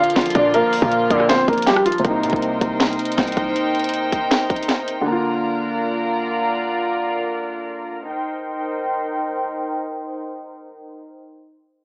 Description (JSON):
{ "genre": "hip hop, trap", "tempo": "159 BPM", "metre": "4/4", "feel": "half-time", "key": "C minor", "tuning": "A4 = 439 Hz", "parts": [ { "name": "dark concert grand piano", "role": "melody", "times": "0.0-2.0 s", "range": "F3 to F5", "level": "-17 LUFS", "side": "equal", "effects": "low-pass filter, digital delay" }, { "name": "gliding portamento lead", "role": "second line", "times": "0.0-1.3 s", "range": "D5 to F5", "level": "-22 LUFS", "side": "equal", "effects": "chorus" }, { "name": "warm studio string section", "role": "sustained chords", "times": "0.0-11.1 s", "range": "D3 to Bb5", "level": "-23 LUFS", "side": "equal", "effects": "low-pass filter" }, { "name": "trap drum kit", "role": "drums", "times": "0.0-5.0 s", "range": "handclaps, hi-hat, kick drum, rim click, snare drum", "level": "-21 LUFS", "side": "equal", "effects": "none" }, { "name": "hard-hitting 808-style bass", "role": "bass", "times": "0.2-3.5 s", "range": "Bb1 to C3", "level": "-26 LUFS", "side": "equal", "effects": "none" }, { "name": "resonant sweep polysynth", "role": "stabs", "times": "1.1-1.4 s", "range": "F2 to D3", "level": "-27 LUFS", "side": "equal", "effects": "chorus" }, { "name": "felt-muted upright piano", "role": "accompaniment", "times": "2.0-8.1 s", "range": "C3 to F4", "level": "-24 LUFS", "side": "equal", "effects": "low-pass filter" } ], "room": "light reverb, small room ambience", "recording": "worn, warbling old tape, cassette tape, warbly pitch drift, small speaker sound", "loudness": "-18 LUFS", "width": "side -36 dB against mid", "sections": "0.0-2.0 A section; 2.0-8.1 B section; 8.1-11.1 C section", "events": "none", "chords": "0.0 Bb; 2.0 Cm7; 5.1 Bb; 8.1 Cm7", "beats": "0.16 | 0.54 0.92 1.29 1.67 | 2.05 2.42 2.80 3.18 | 3.56 3.93 4.31 4.69 | 5.07 5.44 5.82 6.20 | 6.58 6.95 7.33 7.71 | 8.09 8.46 8.84 9.22 | 9.59 9.97 10.35 10.73" }